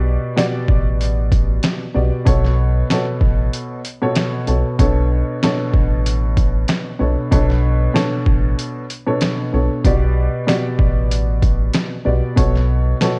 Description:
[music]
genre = hip hop, boom-bap hip-hop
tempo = 95 BPM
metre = 4/4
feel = swing 54% on 16ths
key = B minor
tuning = A4 = 440 Hz
[part]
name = dark upright piano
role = accompaniment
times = 0.0-13.2 s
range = B2 to D5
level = -23 LUFS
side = equal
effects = high-pass filter, low-pass filter
[part]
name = sub bass with octave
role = bass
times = 0.0-12.9 s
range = A1 to B1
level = -20 LUFS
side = equal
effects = none
[part]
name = boom bap sampler-style drum kit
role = drums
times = 0.4-13.2 s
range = hi-hat, kick drum, snare drum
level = -20 LUFS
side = equal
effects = overdrive
[sound]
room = light reverb, digital ambience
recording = worn, warbling old tape, cassette tape, warbly pitch drift, faint mains hum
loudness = -18 LUFS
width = mono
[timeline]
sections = 0.0-13.2 A section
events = break 3.5-4.8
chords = 0.0 A13sus4; 2.3 F#m; 4.8 Bm7; 9.8 A13sus4; 12.4 F#m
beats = 0.38 1.01 1.64 | 2.27 2.90 3.53 4.16 | 4.80 5.43 6.06 6.69 | 7.32 7.95 8.59 9.22 | 9.85 10.48 11.11 11.74 | 12.38 13.01

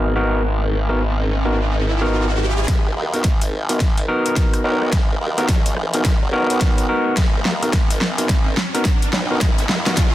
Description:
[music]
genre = glitch hop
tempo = 107 BPM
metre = 4/4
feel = swing 62% on 16ths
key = G# minor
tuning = A4 = 440 Hz
[part]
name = overdriven tine electric piano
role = stabs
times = 0.0-10.0 s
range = B3 to A#4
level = -22 LUFS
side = equal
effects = vintage 12-bit sampler grit, sidechain pumping, digital delay
[part]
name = formant-sweep wobble bass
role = bass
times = 0.0-10.1 s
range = F#1 to D#2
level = -22 LUFS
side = equal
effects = chorus, tube saturation, high-pass filter
[part]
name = riser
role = sound effects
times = 0.0-10.1 s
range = none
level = -29 LUFS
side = right 1 dB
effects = none
[part]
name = dubstep drum kit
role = drums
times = 2.7-10.1 s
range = hi-hat, rim click, snare drum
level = -23 LUFS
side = equal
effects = none
[part]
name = electronic kick drum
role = drums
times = 2.7-10.1 s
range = none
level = -18 LUFS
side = equal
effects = none
[sound]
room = light reverb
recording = dense, heavily limited modern master, low-pass filter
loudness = -16 LUFS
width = side -14 dB against mid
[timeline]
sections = 0.0-2.7 A section; 2.7-10.1 B section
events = riser 0.0-2.7, 2.7-10.1; filter sweep 0.0-2.7; build-up 2.7-10.1; drum fill 2.7-10.1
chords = 0.0 G#m7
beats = | 0.44 1.00 1.56 2.12 | 2.68 3.25 3.81 4.37 | 4.93 5.49 6.05 6.61 | 7.17 7.73 8.29 8.85 | 9.41 9.97

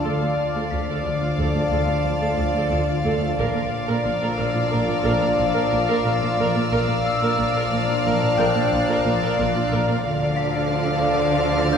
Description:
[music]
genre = cinematic, suspense film score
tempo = 90 BPM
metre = 5/4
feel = straight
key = unclear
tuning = A4 = 440 Hz
[part]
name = dark studio violin section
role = second line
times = 0.0-11.8 s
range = D5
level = -27 LUFS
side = left 1 dB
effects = none
[part]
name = dark chamber viola section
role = accompaniment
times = 0.0-11.8 s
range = F4 to Bb4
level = -28 LUFS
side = right 3 dB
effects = none
[part]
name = soft additive organ-like pad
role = sustained chords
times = 0.0-11.8 s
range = F4 to Bb5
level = -31 LUFS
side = right 1 dB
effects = ensemble chorus, built-in reverb
[part]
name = concert harp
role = texture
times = 0.0-11.8 s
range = G5 to B6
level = -32 LUFS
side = equal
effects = none
[part]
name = warm symphonic violin section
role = texture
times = 0.0-11.8 s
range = D6 to A6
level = -32 LUFS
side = left 3 dB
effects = none
[part]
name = warm symphonic violin section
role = melody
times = 0.1-11.8 s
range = F5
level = -28 LUFS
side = left 1 dB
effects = none
[part]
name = mellow French horn section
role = sustained chords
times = 0.1-11.8 s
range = F3 to D4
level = -27 LUFS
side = equal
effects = none
[part]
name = marimba with medium hard mallets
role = riff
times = 0.1-11.8 s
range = Bb2 to D4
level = -28 LUFS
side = left 5 dB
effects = none
[part]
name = dark symphonic double bass section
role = bass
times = 0.1-11.8 s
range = Bb1 to D2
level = -30 LUFS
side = right 2 dB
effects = none
[part]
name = warm studio cello section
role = bass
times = 0.1-11.8 s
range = D2 to D3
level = -28 LUFS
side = right 3 dB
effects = none
[sound]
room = wet scoring stage reverb, RT60 1.6 s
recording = heard from further back in the room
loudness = -19 LUFS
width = side -7 dB against mid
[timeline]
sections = 0.0-11.8 A section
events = none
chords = 0.0 Dm; 3.4 Bb; 10.1 Dm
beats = | 0.05 0.72 1.38 2.05 2.72 | 3.38 4.05 4.72 5.38 6.05 | 6.72 7.38 8.05 8.72 9.38 | 10.05 10.72 11.38

